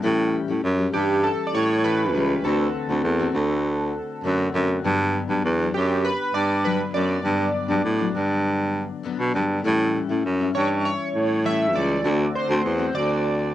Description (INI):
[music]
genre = indie pop, bedroom pop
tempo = 100 BPM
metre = 4/4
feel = straight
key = G major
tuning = A4 = 442 Hz
[part]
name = picked steel-string acoustic guitar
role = accompaniment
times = 0.0-13.5 s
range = G2 to G4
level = -28 LUFS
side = left 6 dB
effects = lush chorus, warbly pitch drift, cassette tape
[part]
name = clear baritone saxophone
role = bass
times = 0.0-13.5 s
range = C#2 to B2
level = -22 LUFS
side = right 1 dB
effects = none
[part]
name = chorused retro synth keys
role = melody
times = 0.9-13.5 s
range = G4 to E5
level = -26 LUFS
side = right 1 dB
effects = analog chorus, cassette tape, analog delay
[sound]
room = light reverb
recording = home recording on cassette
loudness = -20 LUFS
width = side -13 dB against mid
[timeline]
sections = 0.0-13.5 A section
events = none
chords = 0.0 A7; 2.4 D7; 4.8 Gmaj7; 9.6 A7; 12.0 D7